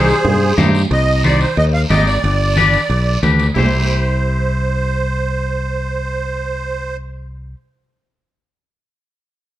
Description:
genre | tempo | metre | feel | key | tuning
latin, cumbia | 181 BPM | 4/4 | straight | unclear | A4 = 437 Hz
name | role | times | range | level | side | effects
musette accordion | melody | 0.0-7.0 s | Ab4 to F5 | -19 LUFS | right 2 dB | plate reverb
breathy tenor saxophone | second line | 0.0-0.5 s | G3 | -29 LUFS | left 2 dB | none
twangy electric guitar | accompaniment | 0.0-7.6 s | D4 to D5 | -20 LUFS | left 5 dB | none
fingered electric bass | bass | 0.0-7.5 s | G1 to G2 | -17 LUFS | equal | none
guiro | percussion | 0.1-3.6 s | none | -28 LUFS | right 1 dB | none
congas | percussion | 0.2-3.6 s | none | -20 LUFS | right 1 dB | none
cowbell and timbales | percussion | 0.2-3.6 s | none | -26 LUFS | right 3 dB | none
room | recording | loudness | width
light reverb | dark, warm production | -14 LUFS | side -14 dB against mid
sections
0.9-3.6 A section; 3.6-6.2 B section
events
none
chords
0.0 Cm; 2.2 G; 3.6 C

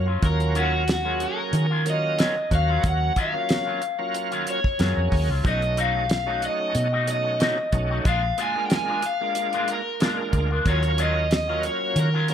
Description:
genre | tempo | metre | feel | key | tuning
straight-eighth soul blues | 92 BPM | 4/4 | swing 54% on 16ths | Eb minor | A4 = 440 Hz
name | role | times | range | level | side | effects
overdriven semi-hollow guitar | melody | 0.0-12.3 s | Gb4 to Ab5 | -26 LUFS | left 1 dB | none
bright tonewheel organ | accompaniment | 0.0-12.3 s | Gb3 to Ab4 | -30 LUFS | right 4 dB | slow rotary speaker, overdrive, chorus vibrato
vintage muted fingered electric bass | bass | 0.0-12.3 s | Bb1 to Eb3 | -24 LUFS | equal | none
electric guitar with an envelope filter | stabs | 0.1-12.3 s | Bb2 to F#4 | -30 LUFS | left 3 dB | spring reverb, tape echo
damped 70s drum kit | drums | 0.2-12.3 s | hi-hat, kick drum, snare drum | -25 LUFS | equal | none
room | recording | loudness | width
light reverb | none | -21 LUFS | side -9 dB against mid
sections
0.0-12.3 A section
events
none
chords
0.0 Ebm9; 5.4 B7; 8.1 Bb7; 10.7 Ebm9

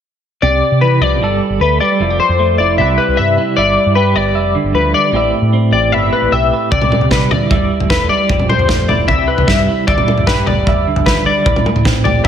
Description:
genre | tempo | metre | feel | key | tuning
math rock and midwest emo | 152 BPM | 4/4 | straight | C major | A4 = 440 Hz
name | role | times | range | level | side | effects
clean electric guitar | accompaniment | 0.4-12.3 s | A2 to E5 | -17 LUFS | right 5 dB | tremolo, slapback echo
clean electric guitar | arpeggios | 0.4-12.3 s | B4 to E5 | -14 LUFS | left 4 dB | analog chorus, slapback echo
fingered electric bass | bass | 0.4-12.3 s | E1 to C3 | -18 LUFS | equal | none
loose indie drum kit | drums | 6.7-12.3 s | kick drum, snare drum, toms | -15 LUFS | equal | none
room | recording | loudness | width
wet concert hall reverb, RT60 2.1 s | big arena sound | -11 LUFS | side -8 dB against mid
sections
0.4-12.3 A section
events
none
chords
0.4 Cmaj9; 1.2 Gadd9; 2.0 Fmaj9; 2.8 Cmaj7; 3.6 G6; 5.1 Am9; 6.7 Cmaj9; 7.5 G69; 8.3 Fmaj9; 9.1 Cmaj7; 9.9 G6; 11.5 Am9

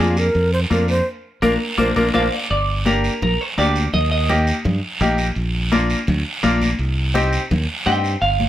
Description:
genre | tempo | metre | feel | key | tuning
latin, cumbia | 168 BPM | 4/4 | straight | C minor | A4 = 440 Hz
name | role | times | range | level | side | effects
mellow shakuhachi | melody | 0.0-2.3 s | F4 to C5 | -21 LUFS | right 1 dB | plate reverb
bright upright piano | accompaniment | 0.0-8.1 s | Bb3 to Ab4 | -20 LUFS | left 2 dB | none
modern bright fingered electric bass | bass | 0.0-8.5 s | G1 to G2 | -20 LUFS | equal | none
guiro | percussion | 0.2-8.5 s | none | -27 LUFS | right 3 dB | none
congas | percussion | 0.4-8.5 s | none | -24 LUFS | left 2 dB | none
semi-hollow electric guitar | second line | 1.4-4.8, 7.9-8.5 s | Bb4 to G5 | -22 LUFS | right 2 dB | none
room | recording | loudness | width
light reverb | none | -16 LUFS | side -12 dB against mid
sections
0.0-2.5 A section; 2.5-8.5 B section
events
band accent 1.1-2.5; clean electric guitar solo 2.5-8.5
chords
0.0 Bb; 2.5 Gm; 3.9 Eb; 5.4 Bb; 6.8 Cm

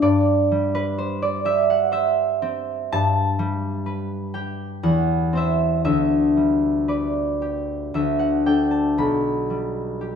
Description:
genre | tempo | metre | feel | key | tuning
classical, solo harp piece | 57-66 BPM | 3/4 | rubato | G major | A4 = 440 Hz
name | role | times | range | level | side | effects
concert harp | solo | 0.0-10.2 s | B1 to B5 | -19 LUFS | equal | none
room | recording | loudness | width
wet stone room reverb, RT60 1.3 s | none | -19 LUFS | side -7 dB against mid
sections
0.0-10.2 A section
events
none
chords
0.0 C/G; 2.9 G; 4.8 C/E; 5.8 G/D; 7.9 D; 9.0 G/B

